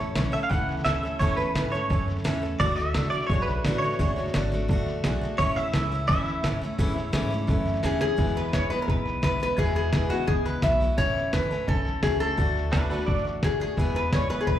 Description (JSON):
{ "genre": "honky-tonk and classic country", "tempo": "172 BPM", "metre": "4/4", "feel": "straight", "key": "E mixolydian", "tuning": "A4 = 440 Hz", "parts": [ { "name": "direct-recorded clean electric guitar", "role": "second line", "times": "0.0-7.8, 12.7-13.2 s", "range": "D4 to F#5", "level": "-28 LUFS", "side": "right 2 dB", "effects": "ensemble chorus, plate reverb, slapback echo, tape echo" }, { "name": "clear upright piano", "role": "accompaniment", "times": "0.0-14.6 s", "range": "B3 to G#5", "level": "-35 LUFS", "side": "right 6 dB", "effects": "plate reverb, slapback echo" }, { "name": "picked steel-string acoustic guitar", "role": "accompaniment", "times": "0.0-14.6 s", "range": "E2 to A4", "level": "-31 LUFS", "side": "left 2 dB", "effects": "plate reverb" }, { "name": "upright bass", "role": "bass", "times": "0.0-14.6 s", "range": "F#1 to A2", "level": "-30 LUFS", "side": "equal", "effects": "none" }, { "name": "lo-fi sampler-style drum kit", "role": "drums", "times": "0.2-14.6 s", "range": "hi-hat, kick drum, snare drum", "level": "-28 LUFS", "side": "equal", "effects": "none" }, { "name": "lap resonator guitar", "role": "melody", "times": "7.9-14.6 s", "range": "F#4 to E5", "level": "-27 LUFS", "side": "left 3 dB", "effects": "plate reverb, slapback echo" } ], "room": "light reverb", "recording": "live gig heard through the venue's PA, club reverb", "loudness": "-23 LUFS", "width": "side -11 dB against mid", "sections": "0.0-8.2 A section; 8.2-14.6 B section", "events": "clean electric guitar solo 0.0-8.2; drum fill 7.8-8.2", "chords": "0.0 A; 2.6 D; 5.4 A; 8.2 E; 11.0 A; 12.4 D; 13.8 E" }